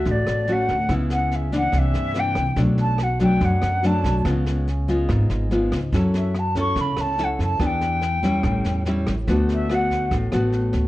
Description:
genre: bossa nova.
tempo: 143 BPM.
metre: 4/4.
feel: straight.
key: D major.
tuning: A4 = 440 Hz.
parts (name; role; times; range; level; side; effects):
concert flute; melody; 0.0-10.1 s; D5 to C#6; -25 LUFS; equal; plate reverb.
nylon-string guitar; accompaniment; 0.0-10.9 s; F#2 to A4; -23 LUFS; left 1 dB; none.
upright bass; bass; 0.1-10.9 s; G#1 to G2; -24 LUFS; equal; none.
jazz brush drum kit; drums; 0.1-10.8 s; kick drum, rim click, snare drum; -30 LUFS; right 1 dB; none.
room: light reverb.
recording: worn, warbling old tape, cassette tape, warbly pitch drift.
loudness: -19 LUFS.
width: side -16 dB against mid.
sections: 0.0-10.9 A section.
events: flute solo 0.0-10.9.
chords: 0.0 Dmaj7; 0.9 C#m7; 1.7 C9; 2.6 Bm7; 4.3 C#7; 5.9 F#m7; 7.6 Em7; 8.4 A7; 9.3 D6.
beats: 0.06 0.48 | 0.90 1.32 1.74 2.16 | 2.58 2.99 3.41 3.83 | 4.25 4.67 5.09 5.51 | 5.93 6.35 6.76 7.18 | 7.60 8.02 8.44 8.86 | 9.28 9.70 10.12 10.54.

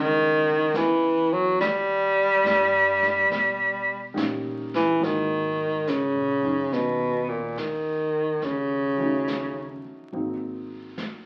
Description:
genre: jazz ballad.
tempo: 70 BPM.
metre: 4/4.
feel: swing 67% on 8ths.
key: G# minor.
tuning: A4 = 440 Hz.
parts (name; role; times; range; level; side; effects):
warm baritone saxophone; melody; 0.0-9.9 s; A#2 to G3; -24 LUFS; equal; none.
warm baby grand piano; accompaniment; 0.0-11.3 s; C#3 to D#4; -35 LUFS; equal; none.
upright bass; bass; 0.0-11.3 s; G#1 to B2; -44 LUFS; equal; none.
jazz brush drum kit; drums; 0.7-11.3 s; brushed snare drum, hi-hat, snare drum; -38 LUFS; equal; none.
room: wet large studio reverb, RT60 0.9 s.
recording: very old 78 rpm record, vinyl crackle.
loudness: -24 LUFS.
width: mono.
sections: 0.0-5.0 A section; 5.0-11.3 B section.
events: none.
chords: 0.0 Amaj9 (rootless); 1.6 D#7b13; 5.0 G#sus2; 8.4 D#m7b5; 10.1 G#7.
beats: 0.75 | 1.60 2.45 3.31 4.16 | 5.01 5.87 6.72 7.57 | 8.43 9.28 10.13 10.98.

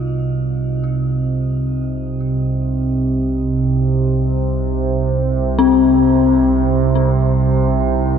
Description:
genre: dark ambient drone.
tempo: free time.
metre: none.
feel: none.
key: C minor.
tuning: A4 = 440 Hz.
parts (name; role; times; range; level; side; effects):
dark detuned synth bell; arpeggios; 0.0-8.2 s; C4 to F4; -18 LUFS; left 8 dB; chorus, ping-pong delay, shimmer reverb.
analog drone; drone; 0.0-8.2 s; C2 to C3; -16 LUFS; right 2 dB; chorus.
quartz singing bowl; texture; 0.0-8.2 s; Eb4 to Eb5; -37 LUFS; right 4 dB; shimmer reverb.
room: wet cathedral reverb, RT60 7.2 s.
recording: none.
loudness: -14 LUFS.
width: side -7 dB against mid.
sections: 0.0-8.2 A section.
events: fade-in on synth drone 0.0-8.2; fade-in on singing bowl 0.0-8.2.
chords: 0.0 Cdim.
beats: free time.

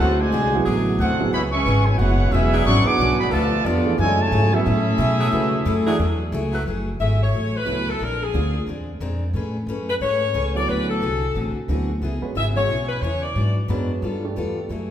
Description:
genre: jazz.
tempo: 179 BPM.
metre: 4/4.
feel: swing 62% on 8ths.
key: F# minor.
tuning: A4 = 440 Hz.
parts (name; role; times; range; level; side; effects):
clear trumpet section; melody; 0.0-6.3 s; B3 to D6; -23 LUFS; right 1 dB; none.
dark trombone section; second line; 0.0-6.3 s; A2 to F#4; -25 LUFS; right 1 dB; none.
picked steel-string acoustic guitar; accompaniment; 0.0-14.9 s; G#2 to B4; -28 LUFS; left 2 dB; none.
upright bass; bass; 0.0-14.9 s; E1 to C#3; -22 LUFS; equal; none.
warm upright piano; accompaniment; 0.6-8.5, 10.5-14.7 s; D3 to D5; -28 LUFS; right 4 dB; none.
edgy saxophone section; sustained chords; 0.6-6.6 s; F#3 to B4; -30 LUFS; equal; none.
clear saxophone section; melody; 7.0-13.6 s; G#4 to E5; -24 LUFS; left 3 dB; none.
room: wet recital hall reverb, RT60 1.8 s.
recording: recorded in a church or concert hall.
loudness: -18 LUFS.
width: side -10 dB against mid.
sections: 0.0-6.7 A section; 6.7-14.9 B section.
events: none.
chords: 0.0 D7#11; 1.3 C#m7; 2.7 G#m7b5; 3.3 G9; 4.0 F#m9; 8.0 A#9; 9.3 Amaj9; 10.7 D7#11; 12.0 C#m7; 13.4 G#m7b5; 14.0 G9.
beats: 0.32 0.66 0.99 | 1.32 1.66 1.99 2.32 | 2.66 2.99 3.32 3.66 | 3.99 4.32 4.66 4.99 | 5.32 5.66 5.99 6.33 | 6.66 7.00 7.33 7.66 | 8.00 8.33 8.67 9.00 | 9.34 9.67 10.01 10.34 | 10.68 11.01 11.35 11.68 | 12.02 12.35 12.68 13.02 | 13.35 13.69 14.02 14.36 | 14.69.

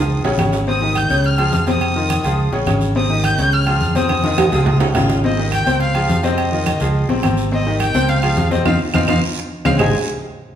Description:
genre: latin, salsa.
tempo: 210 BPM.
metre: 4/4.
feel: straight.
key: Ab major.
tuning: A4 = 440 Hz.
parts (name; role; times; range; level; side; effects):
rich erhu; melody; 0.0-9.9 s; Eb5 to G6; -22 LUFS; equal; none.
bright baby grand piano; accompaniment; 0.0-9.9 s; C3 to Eb5; -20 LUFS; left 2 dB; none.
fingered electric bass; bass; 0.0-9.9 s; Ab1 to F2; -20 LUFS; right 1 dB; none.
congas; percussion; 0.1-9.9 s; none; -24 LUFS; left 1 dB; none.
guiro; percussion; 0.1-9.9 s; none; -33 LUFS; right 4 dB; none.
timbales and agogo bells; percussion; 0.2-9.9 s; none; -23 LUFS; right 2 dB; none.
claves; percussion; 0.4-9.9 s; none; -30 LUFS; right 6 dB; none.
clear saxophone section; second line; 4.2-5.2 s; Ab3 to F4; -28 LUFS; left 1 dB; none.
room: wet large studio reverb, RT60 1.4 s.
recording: band playing live in one room.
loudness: -14 LUFS.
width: side -10 dB against mid.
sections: 0.0-5.2 A section; 5.2-9.8 B section.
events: drum fill 0.0-0.7, 4.1-5.2, 9.4-9.8; band accent 8.7-9.8.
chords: 0.1 Db; 0.7 Abmaj7; 1.2 Dbmaj7; 1.8 Fm7; 2.4 Db; 3.0 Abmaj7; 3.5 Dbmaj7; 4.1 Fm7; 4.7 Db; 5.2 Abmaj7; 5.8 Dbmaj7; 6.4 Fm7; 6.9 Dbmaj7; 7.5 Abmaj7; 8.1 Dbmaj7; 8.7 F5; 9.2 Dbmaj7(no3); 9.8 Abmaj7.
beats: 0.10 0.39 | 0.67 0.96 1.24 1.53 | 1.81 2.10 2.38 2.67 | 2.96 3.24 3.53 3.81 | 4.10 4.38 4.67 4.95 | 5.24 5.52 5.81 6.09 | 6.38 6.66 6.95 7.23 | 7.52 7.80 8.09 8.37 | 8.66 8.94 9.23 9.51 | 9.80.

